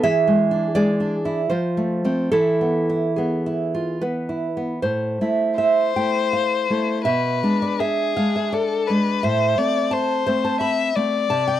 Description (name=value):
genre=romantic duo for violin and classical guitar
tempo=70-88 BPM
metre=3/4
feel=rubato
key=A minor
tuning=A4 = 439 Hz
part: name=nylon-string guitar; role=accompaniment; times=0.0-11.6 s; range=A2 to B5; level=-20 LUFS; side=right 2 dB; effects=none
part: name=warm violin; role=melody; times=5.6-11.6 s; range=G#4 to E5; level=-22 LUFS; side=left 7 dB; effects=none
room=light reverb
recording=dry, close 1970s-style studio recording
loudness=-18 LUFS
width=side -12 dB against mid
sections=0.0-4.8 A section; 4.8-11.6 B section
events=none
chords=0.0 E7; 1.5 F; 2.3 E; 4.8 Am; 7.1 Bm6; 9.2 Am